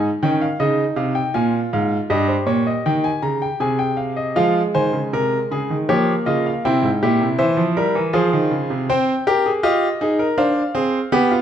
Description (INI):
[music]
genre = classical, baroque-style 4-part fugue for grand piano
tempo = 80 BPM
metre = 3/4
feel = straight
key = F minor from 4.4 s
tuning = A4 = 440 Hz
[part]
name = bright grand piano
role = solo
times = 0.0-11.4 s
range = G2 to Bb5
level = -16 LUFS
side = equal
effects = none
[sound]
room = moderate recital hall reverb, RT60 1.4 s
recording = close, detailed microphones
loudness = -17 LUFS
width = side -9 dB against mid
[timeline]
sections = 0.0-4.4 A section; 4.4-11.4 B section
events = none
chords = 0.0 Ab (rootless); 1.3 Bb5; 2.1 Eb/G; 3.6 Ab/C; 4.4 Fm; 5.9 Gm7b5/F; 6.6 C; 8.1 Fm; 8.9 Cm; 10.4 Dm7b5